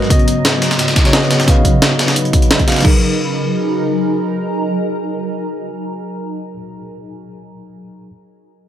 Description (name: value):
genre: liquid drum and bass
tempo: 175 BPM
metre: 4/4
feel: straight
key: F# major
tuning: A4 = 439 Hz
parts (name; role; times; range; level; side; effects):
- tine electric piano; accompaniment; 0.0-8.1 s; C#3 to E#5; -20 LUFS; equal; medium tremolo, tape echo
- shimmering ambient pad; sustained chords; 0.0-6.3 s; C#3 to B4; -20 LUFS; equal; chorus, built-in reverb, phaser
- breakbeat sampler-style drum kit; drums; 0.0-2.8 s; hi-hat, snare drum; -18 LUFS; equal; overdrive, high-pass filter on hats, high-pass filter on snare, high-pass filter on room
- breakbeat sampler-style drum kit; drums; 0.1-2.9 s; crash cymbal, hi-hat, snare drum; -18 LUFS; equal; none
- electronic kick drum; drums; 0.1-2.9 s; none; -13 LUFS; equal; none
room: light reverb, digital ambience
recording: none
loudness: -12 LUFS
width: side -10 dB against mid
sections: 0.0-2.8 A section; 2.8-5.6 B section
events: none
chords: 0.1 C#9sus4; 2.8 F#69